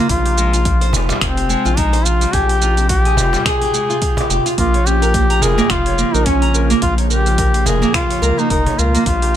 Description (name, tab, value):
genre	organic downtempo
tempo	107 BPM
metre	4/4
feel	swing 57% on 16ths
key	Bb dorian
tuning	A4 = 438 Hz
part	clear duduk	melody	0.0-9.4 s	C4 to Ab4	-19 LUFS	left 1 dB	digital delay
part	warbly tape-like pad	sustained chords	0.0-9.4 s	C3 to F4	-25 LUFS	right 2 dB	chorus, built-in reverb, sidechain pumping
part	nylon-string guitar	arpeggios	0.0-9.4 s	G3 to Bb5	-20 LUFS	right 1 dB	ping-pong delay
part	round analog bass	bass	0.1-9.4 s	F1 to Db2	-17 LUFS	equal	sidechain pumping
part	afro-pop drum kit	drums	0.1-9.3 s	finger snaps, hi-hat, shaker	-22 LUFS	right 3 dB	none
part	electronic kick drum	drums	0.1-9.2 s	none	-20 LUFS	equal	none
part	cajon	percussion	0.9-8.8 s	none	-25 LUFS	right 1 dB	none
room	small room reverb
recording	none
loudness	-13 LUFS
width	side -10 dB against mid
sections	0.0-9.4 A section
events	none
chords	0.1 Fmadd9; 4.6 Bbm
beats	| 0.09 0.65 1.21 1.77 | 2.33 2.90 3.46 4.02 | 4.58 5.14 5.70 6.26 | 6.82 7.38 7.94 8.50 | 9.06